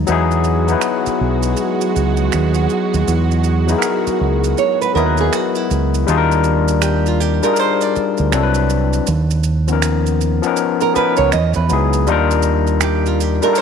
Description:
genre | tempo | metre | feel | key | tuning
R&B, neo-soul | 80 BPM | 4/4 | swing 62% on 16ths | unclear | A4 = 440 Hz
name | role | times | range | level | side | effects
overdriven tine electric piano | accompaniment | 0.0-13.6 s | E#3 to D#5 | -18 LUFS | left 8 dB | auto-pan
deep dub fingered electric bass | bass | 0.0-13.4 s | B1 to E2 | -17 LUFS | right 2 dB | none
warm studio string section | sustained chords | 0.1-6.0 s | F#3 to F#4 | -22 LUFS | right 7 dB | none
maracas and finger snaps | percussion | 0.1-13.6 s | none | -25 LUFS | right 12 dB | none
nylon-string guitar | second line | 4.6-13.6 s | E4 to D#5 | -19 LUFS | right 11 dB | slapback echo
room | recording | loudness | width
moderate echo chamber reverb, RT60 2.6 s | 1960s-style stereo with parts hard left and right | -14 LUFS | side -7 dB against mid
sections
0.1-6.1 A section; 6.1-13.6 B section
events
none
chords
0.1 Emaj9; 6.1 Ebmaj9; 8.3 Cmaj9#11; 9.1 Bmaj9#11/D#; 11.3 Emaj9; 12.1 Ebmaj9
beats
| 0.07 0.82 1.57 2.32 | 3.07 3.82 4.57 5.32 | 6.07 6.82 7.57 8.32 | 9.07 9.82 10.57 11.32 | 12.07 12.82 13.57

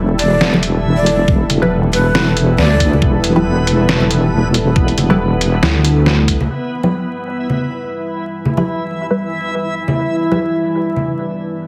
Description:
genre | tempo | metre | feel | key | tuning
deep dubstep | 138 BPM | 4/4 | swing 56% on 16ths, half-time | E minor | A4 = 440 Hz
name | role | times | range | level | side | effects
dark analog pad | sustained chords | 0.0-11.7 s | G3 to B4 | -26 LUFS | equal | chorus, vintage 12-bit sampler grit
deep soft wobble bass | bass | 0.0-6.5 s | E1 to D2 | -17 LUFS | equal | chorus
backwards swelling texture | texture | 0.0-11.7 s | E3 to E4 | -23 LUFS | equal | built-in reverb
breathy bright ney | melody | 0.2-2.9 s | B4 to D5 | -22 LUFS | equal | dub echo
trip hop sampler-style drum kit | drums | 0.2-6.4 s | hi-hat, snare drum | -20 LUFS | equal | none
congas | percussion | 0.5-11.0 s | none | -22 LUFS | equal | none
electronic kick drum | drums | 1.3-6.4 s | none | -17 LUFS | equal | none
filtered dub chord stab | stabs | 1.6-10.4 s | G3 to B4 | -25 LUFS | equal | phaser, analog chorus, cassette tape, dub echo
room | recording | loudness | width
moderate digital room reverb, RT60 0.9 s | heavily compressed radio sound, vinyl crackle | -15 LUFS | mono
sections
0.0-6.5 A section; 6.5-11.7 B section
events
drop 0.0-6.5; filter sweep on analog synth pad 6.5-11.7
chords
0.0 Em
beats
0.41 0.85 | 1.28 1.72 2.15 2.58 | 3.02 3.45 3.89 4.32 | 4.76 5.19 5.63 6.06 | 6.50 6.93 7.37 7.80 | 8.24 8.67 9.11 9.54 | 9.98 10.41 10.85 11.28

